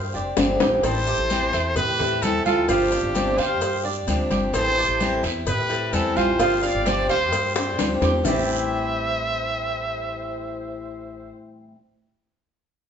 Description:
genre	latin, Cuban son and guajira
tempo	129 BPM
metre	4/4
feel	straight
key	A minor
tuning	A4 = 440 Hz
part	bright trumpet	melody	0.0-11.3 s	G4 to F5	-25 LUFS	right 1 dB	none
part	dark studio violin section	second line	0.0-11.3 s	D4 to D5	-33 LUFS	left 1 dB	none
part	Cuban tres	arpeggios	0.0-11.3 s	A3 to F5	-27 LUFS	right 4 dB	none
part	upright bass	bass	0.0-11.3 s	F1 to A2	-30 LUFS	equal	none
part	picked old ladder-braced acoustic guitar	accompaniment	0.1-11.8 s	A2 to G4	-27 LUFS	left 2 dB	none
part	congas	percussion	0.1-8.4 s	none	-30 LUFS	left 2 dB	none
part	cowbell and bongos	percussion	0.4-8.4 s	none	-28 LUFS	left 4 dB	none
part	guiro	percussion	0.4-8.4 s	none	-36 LUFS	right 5 dB	none
part	maracas	percussion	0.4-8.4 s	none	-39 LUFS	left 4 dB	none
room	wet large studio reverb, RT60 1.1 s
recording	band playing live in one room, nothing above 7.8 kHz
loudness	-20 LUFS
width	side -8 dB against mid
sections	0.8-8.3 A section; 8.3-12.0 B section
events	drum fill 0.4-0.8, 7.6-8.3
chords	0.0 G7sus4; 0.8 Am7; 2.7 G7sus4; 4.5 Am7; 6.4 G7sus4; 8.3 Am7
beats	0.37 | 0.83 1.30 1.76 2.23 | 2.69 3.15 3.62 4.08 | 4.54 5.01 5.47 5.93 | 6.40 6.86 7.33 7.79 | 8.25 8.71 9.18 9.64 | 10.11 10.57 11.03 11.50

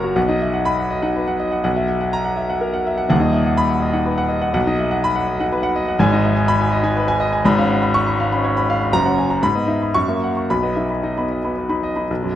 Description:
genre	classical, virtuoso piano study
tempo	110-126 BPM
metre	3/4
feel	rubato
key	B major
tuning	A4 = 440 Hz
part	clear grand piano	solo	0.0-12.4 s	D#1 to C#6	-16 LUFS	equal	none
room	moderate recital hall reverb, RT60 1.6 s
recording	none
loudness	-16 LUFS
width	side -11 dB against mid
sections	0.2-12.1 A section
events	none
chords	0.2 B; 1.7 F#7/B; 3.1 B/D#; 4.5 B; 6.0 G#m; 7.5 C#7/G#; 8.9 F#; 9.4 G#m; 9.9 F#7; 10.5 B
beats	| 0.16 0.67 1.16 | 1.66 2.14 2.62 | 3.10 3.58 4.06 | 4.55 5.03 5.51 | 5.99 6.47 6.96 | 7.46 7.95 8.45 | 8.93 9.43 9.95 | 10.48 11.02 11.56 | 12.10

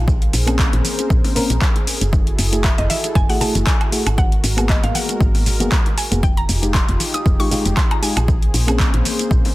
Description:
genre	deep house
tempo	117 BPM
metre	4/4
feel	swing 55% on 16ths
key	unclear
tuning	A4 = 440 Hz
part	mallet-like synth pluck	melody	0.0-9.5 s	Eb5 to Eb6	-27 LUFS	equal	chorus, dub echo
part	warm analog pad	sustained chords	0.0-9.5 s	Ab3 to C5	-29 LUFS	right 1 dB	chorus, sidechain pumping
part	woody FM bass	bass	0.0-9.4 s	F1 to Bb1	-20 LUFS	equal	sidechain pumping
part	deep house drum kit	drums	0.1-9.5 s	handclaps, hi-hat, shaker, woodblock	-23 LUFS	equal	overdrive, studio reverb
part	electronic kick drum	drums	0.1-9.4 s	none	-17 LUFS	equal	overdrive, studio reverb
part	congas and bongos	percussion	0.1-9.5 s	none	-30 LUFS	left 2 dB	none
part	mellow FM electric piano	stabs	0.5-9.5 s	Ab3 to Bb4	-23 LUFS	left 1 dB	chorus, sidechain pumping, digital delay
room	little or no reverb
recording	dense, heavily limited modern master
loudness	-15 LUFS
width	side -18 dB against mid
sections	0.0-9.5 A section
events	none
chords	0.1 Bbm9; 1.9 Gbm9; 4.2 Abm9; 6.2 Fm9; 8.3 Bbm9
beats	| 0.08 0.59 1.10 1.62 | 2.13 2.64 3.15 3.67 | 4.18 4.69 5.21 5.72 | 6.23 6.74 7.26 7.77 | 8.28 8.80 9.31

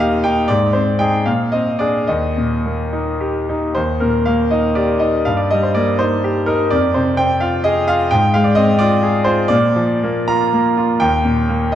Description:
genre	classical, romantic character piece for solo piano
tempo	69-89 BPM (dotted quarters)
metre	6/8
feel	rubato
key	Eb major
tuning	A4 = 440 Hz
part	bright grand piano	solo	0.0-11.8 s	Eb2 to Bb5	-14 LUFS	equal	none
room	wet scoring stage reverb, RT60 1.6 s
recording	dark, warm production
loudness	-14 LUFS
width	side -10 dB against mid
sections	0.0-3.8 A section; 3.8-11.8 A section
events	none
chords	0.5 Ab; 1.2 Bb9; 2.1 Eb; 5.2 Eb/G; 6.7 Fm; 8.1 Fm/Ab; 9.5 Bb; 11.0 Eb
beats	| 0.47 1.24 | 2.07 2.93 | 3.76 4.50 | 5.25 5.99 | 6.71 7.41 | 8.12 8.80 | 9.52 10.29 | 11.01 11.74

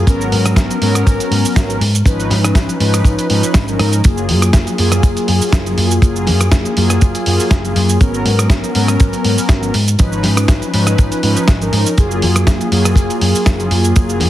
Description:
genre	nu-disco, nu disco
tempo	121 BPM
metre	4/4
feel	swing 54% on 16ths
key	F# major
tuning	A4 = 438 Hz
part	mellow synth brass	accompaniment	0.0-14.3 s	E#3 to B4	-17 LUFS	left 1 dB	chorus, ping-pong delay
part	hollow-body short-scale fingered electric bass	bass	0.0-14.3 s	F#1 to G#2	-16 LUFS	equal	sidechain pumping
part	dusty soul sampler-style drum kit	drums	0.1-14.3 s	hi-hat, rim click, shaker, snare drum	-19 LUFS	equal	none
part	kick drum	drums	0.1-14.1 s	none	-10 LUFS	equal	none
room	studio reverb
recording	heavily compressed radio sound, multiband compression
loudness	-11 LUFS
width	side -13 dB against mid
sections	0.0-14.3 A section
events	none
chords	0.1 G#m11; 1.8 C#9/G#; 4.0 F#maj9; 8.0 G#m11; 9.7 C#9/G#; 12.0 F#maj9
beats	| 0.07 0.57 1.07 1.56 | 2.06 2.55 3.05 3.55 | 4.04 4.54 5.03 5.53 | 6.03 6.52 7.02 7.51 | 8.01 8.51 9.00 9.50 | 9.99 10.49 10.98 11.48 | 11.98 12.47 12.97 13.46 | 13.96

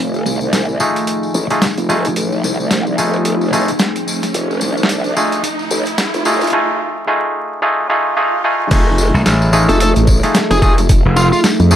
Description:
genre	glitch hop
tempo	110 BPM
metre	4/4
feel	swing 58% on 16ths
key	unclear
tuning	A4 = 440 Hz
part	warbly tape-like pad	sustained chords	0.9-11.8 s	F3 to G#4	-22 LUFS	left 1 dB	chorus, built-in reverb, sidechain pumping
part	growl bass	bass	0.0-11.8 s	F1 to F2	-16 LUFS	equal	distortion, chorus, high-pass filter
part	riser and swell	sound effects	2.5-8.7 s	none	-24 LUFS	right 2 dB	none
part	deep dark ambient pad	texture	0.0-6.5 s	A3 to G#5	-25 LUFS	right 2 dB	chorus, built-in reverb, sidechain pumping
part	tambourine	percussion	0.1-11.8 s	none	-25 LUFS	left 4 dB	none
part	boom bap sampler-style drum kit	drums	0.3-11.6 s	crash cymbal, hi-hat, snare drum	-18 LUFS	equal	overdrive
part	overdriven clav	stabs	0.8-11.8 s	A3 to G#4	-17 LUFS	equal	vintage 12-bit sampler grit, sidechain pumping, low-pass filter, digital delay
part	electronic kick drum	drums	8.7-11.0 s	none	-12 LUFS	equal	none
part	gritty slap bass	bass	9.1-11.3 s	F1 to C2	-12 LUFS	equal	overdrive
part	bluesy overdriven lead guitar	melody	9.7-11.4 s	F4 to A4	-17 LUFS	equal	distortion, vintage 12-bit sampler grit, digital delay
room	light reverb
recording	vinyl crackle, high-pass filter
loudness	-12 LUFS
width	side -10 dB against mid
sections	0.0-8.7 A section; 8.7-11.8 B section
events	build-up 0.0-8.7; filter sweep on ambient pad 0.0-8.7; riser 2.5-6.5; swell 7.8-8.7; drop 8.7-11.8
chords	0.0 F7#9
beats	0.53 1.08 1.62 | 2.17 2.71 3.26 3.80 | 4.35 4.89 5.44 5.99 | 6.53 7.08 7.62 8.17 | 8.71 9.26 9.80 10.35 | 10.89 11.44

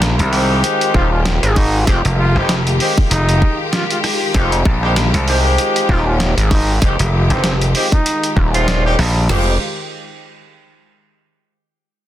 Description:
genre	glitch hop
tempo	97 BPM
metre	4/4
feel	swing 57% on 16ths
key	F minor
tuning	A4 = 440 Hz
part	clear studio string section	sustained chords	0.0-9.6 s	Eb3 to G4	-23 LUFS	left 2 dB	sidechain pumping
part	gritty slap bass	bass	0.0-9.3 s	F1 to C2	-14 LUFS	equal	overdrive
part	boom bap sampler-style drum kit	drums	0.0-9.1 s	hi-hat, rim click, snare drum	-21 LUFS	right 1 dB	studio reverb
part	warm horn section	stabs	0.3-9.5 s	Ab3 to G4	-21 LUFS	equal	sidechain pumping, tape echo
part	breathy trumpet	melody	0.9-8.4 s	C4 to F4	-23 LUFS	equal	vintage 12-bit sampler grit, tape echo
part	gritty driven synth bass	bass	0.9-9.6 s	Eb1 to Ab1	-16 LUFS	equal	tube saturation
part	drum and bass drum kit	drums	0.9-9.5 s	crash cymbal, kick drum, snare drum, toms	-16 LUFS	equal	studio reverb
room	digital ambience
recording	dense, heavily limited modern master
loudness	-13 LUFS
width	side -12 dB against mid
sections	0.0-9.3 A section; 9.3-11.8 B section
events	drop 0.0-9.3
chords	0.0 Fm9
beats	0.02 0.64 1.25 | 1.87 2.49 3.11 3.73 | 4.35 4.97 5.58 6.20 | 6.82 7.44 8.06 8.68 | 9.29

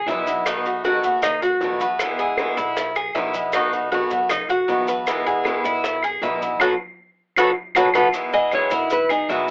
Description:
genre	latin, Cuban son and guajira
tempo	156 BPM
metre	4/4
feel	straight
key	E major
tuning	A4 = 435 Hz
part	Cuban tres	arpeggios	0.0-9.5 s	D#4 to E5	-24 LUFS	equal	cassette tape
part	upright bass	bass	0.0-9.5 s	B1 to F#2	-41 LUFS	equal	none
part	picked swing-style acoustic guitar	accompaniment	0.1-9.5 s	B2 to F#4	-25 LUFS	equal	cassette tape
part	bongos	percussion	0.1-8.0 s	none	-33 LUFS	equal	none
part	congas	percussion	0.1-9.5 s	none	-45 LUFS	equal	none
part	maracas	percussion	0.1-9.5 s	none	-37 LUFS	equal	none
part	claves	percussion	0.5-9.3 s	none	-31 LUFS	equal	none
part	nylon-string guitar	melody	8.3-9.5 s	D#4 to D#5	-23 LUFS	equal	cassette tape
room	wet booth ambience, RT60 0.3 s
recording	home recording on cassette, telephone sound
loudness	-21 LUFS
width	mono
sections	0.0-8.1 A section; 8.1-9.5 B section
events	band accent 6.6-8.1; nylon-string guitar solo 8.1-9.5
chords	0.5 B7; 2.0 Emaj7; 3.5 B7; 5.1 Emaj7; 6.6 B5; 8.1 Emaj7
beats	0.08 | 0.46 0.84 1.23 1.61 | 2.00 2.38 2.76 3.15 | 3.53 3.92 4.30 4.68 | 5.07 5.45 5.84 6.22 | 6.60 6.99 7.37 7.76 | 8.14 8.53 8.91 9.29

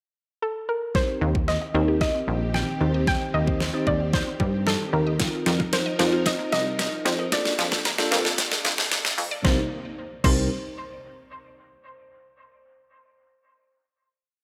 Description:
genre	dance-pop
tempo	113 BPM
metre	4/4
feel	straight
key	C dorian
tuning	A4 = 441 Hz
part	soft round pluck	melody	0.4-10.5 s	A4 to G5	-32 LUFS	equal	chorus, dub echo
part	bell-like tine electric piano	accompaniment	0.9-10.5 s	Bb3 to C5	-32 LUFS	equal	sidechain pumping
part	string machine, violas	sustained chords	0.9-9.7 s	C3 to Bb4	-37 LUFS	equal	ensemble chorus, sidechain pumping
part	resonant blip pluck	arpeggios	0.9-10.5 s	F3 to Eb5	-38 LUFS	equal	none
part	pop drum kit	drums	0.9-10.4 s	crash cymbal, hi-hat, kick drum, snare drum	-27 LUFS	equal	overdrive
part	plucky analog bass	bass	1.2-10.5 s	Bb1 to G2	-29 LUFS	equal	sidechain pumping
room	light reverb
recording	high-pass filter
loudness	-24 LUFS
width	mono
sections	0.0-0.9 pickup bar; 0.9-9.4 build; 9.4-11.6 final chord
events	build-up 0.9-9.4; drum fill 0.9-9.4; filter sweep 0.9-9.4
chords	0.0 N.C.; 0.9 Eb6; 2.8 Cm/Eb; 5.2 F7sus4; 7.3 Bbmaj7/F; 9.4 Cm7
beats	0.42 | 0.95 1.48 2.01 2.54 | 3.07 3.60 4.14 4.67 | 5.20 5.73 6.26 6.79 | 7.32 7.85 8.38 8.91 | 9.45 9.98

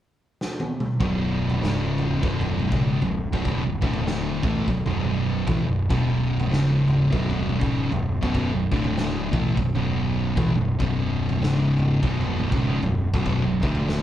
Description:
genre	stoner and doom metal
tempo	98 BPM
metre	4/4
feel	swing 60% on 8ths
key	B dorian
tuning	A4 = 440 Hz
part	raw garage drum kit	drums	0.4-14.0 s	kick drum, snare drum, toms	-26 LUFS	equal	none
part	fuzz guitar	riff	1.0-14.0 s	B1 to A3	-23 LUFS	equal	distortion
part	fuzz fingered electric bass	bass	1.0-14.0 s	B0 to A1	-31 LUFS	equal	overdrive
room	light reverb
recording	band playing live in one room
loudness	-21 LUFS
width	side -12 dB against mid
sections	0.0-1.0 A section; 1.0-14.0 B section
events	drum fill 0.4-1.0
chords	0.0 N.C.; 1.0 B5; 1.6 C#5; 2.2 B5; 3.8 D5; 4.4 B5; 6.5 C#5; 7.1 B5; 8.7 D5; 9.3 B5; 11.4 C#5; 12.0 B5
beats	0.39 | 1.00 1.62 2.23 2.84 | 3.45 4.07 4.68 5.29 | 5.90 6.51 7.13 7.74 | 8.35 8.96 9.58 10.19 | 10.80 11.41 12.03 12.64 | 13.25 13.86

